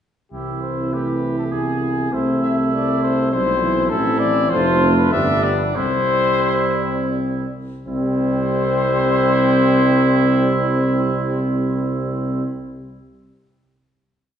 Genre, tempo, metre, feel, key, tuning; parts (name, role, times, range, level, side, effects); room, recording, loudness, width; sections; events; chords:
classical, brass quintet; 82-103 BPM; 3/4; rubato; C major; A4 = 441 Hz
mellow cornet; melody; 0.3-12.4 s; G4 to E5; -22 LUFS; left 5 dB
clear trumpet; second line; 0.3-12.4 s; D4 to G#4; -25 LUFS; right 5 dB
mellow French horn; accompaniment; 0.3-12.4 s; A3 to C4; -24 LUFS; left 2 dB
warm trombone; accompaniment; 0.3-12.4 s; E3 to A3; -24 LUFS; right 3 dB
warm tuba; bass; 0.3-12.4 s; F1 to C2; -22 LUFS; right 2 dB
wet recital hall reverb, RT60 1.6 s; recorded in a church or concert hall, nothing above 10.7 kHz; -16 LUFS; side -9 dB against mid
0.3-7.9 A section; 7.9-12.2 final chord
slowing down 3.0-7.9
0.3 C; 1.5 Cmaj7#5; 2.1 C; 3.9 Am; 4.5 F; 5.1 G; 5.8 C